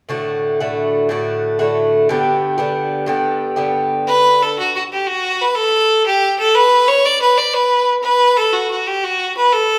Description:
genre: celtic folk.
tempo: 120 BPM (dotted quarters).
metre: 6/8.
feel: straight.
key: D major.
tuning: A4 = 439 Hz.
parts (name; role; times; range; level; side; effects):
Irish bouzouki; accompaniment; 0.1-4.6 s; G2 to G4; -19 LUFS; equal; none.
bright fiddle; melody; 4.1-9.8 s; F#4 to D5; -15 LUFS; equal; none.
room: wet recital hall reverb, RT60 1.6 s.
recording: none.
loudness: -16 LUFS.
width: mono.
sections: 0.1-4.1 A section; 4.1-9.8 B section.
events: none.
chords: 0.1 D; 2.1 G; 4.1 N.C..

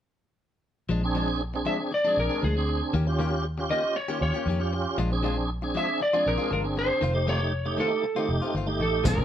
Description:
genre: straight-eighth soul blues.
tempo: 118 BPM.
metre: 4/4.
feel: straight.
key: Bb mixolydian.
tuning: A4 = 442 Hz.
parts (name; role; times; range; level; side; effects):
direct-recorded clean electric guitar; stabs; 0.9-9.2 s; Eb3 to G4; -33 LUFS; left 4 dB; none.
vintage muted fingered electric bass; bass; 0.9-9.2 s; F1 to Bb2; -28 LUFS; equal; none.
tonewheel organ; accompaniment; 1.0-9.2 s; A3 to Ab4; -30 LUFS; right 2 dB; slow rotary speaker, overdrive, chorus vibrato.
electric slide guitar; melody; 1.7-9.2 s; Ab4 to E5; -26 LUFS; equal; none.
cloth-damped thuddy drum kit; drums; 9.1-9.2 s; hi-hat, kick drum; -23 LUFS; equal; none.
room: light reverb.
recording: band playing live in one room.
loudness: -24 LUFS.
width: side -10 dB against mid.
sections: 0.9-9.1 A section.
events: none.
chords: 0.9 Bb7; 2.9 Eb7; 5.0 Bb7; 7.0 F7.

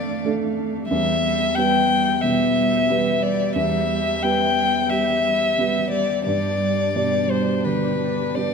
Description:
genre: neoclassical piano and strings.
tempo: 89 BPM.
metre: 4/4.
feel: rubato.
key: unclear.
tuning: A4 = 440 Hz.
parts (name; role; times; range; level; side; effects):
warm violin; melody; 0.0-8.5 s; B4 to G5; -21 LUFS; left 4 dB; none.
warm cello; second line; 0.0-8.5 s; G3 to A3; -27 LUFS; right 7 dB; none.
felt-muted upright piano; accompaniment; 0.0-8.5 s; E2 to D5; -23 LUFS; right 1 dB; none.
dark chamber string section; sustained chords; 0.0-8.5 s; B3 to F5; -31 LUFS; equal; none.
room: moderate concert hall reverb, RT60 2.3 s.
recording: minimal, uncompressed stereo recording.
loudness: -18 LUFS.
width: side -5 dB against mid.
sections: 0.0-8.5 A section.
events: none.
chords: 0.0 Dm/F; 0.9 Em; 6.3 G.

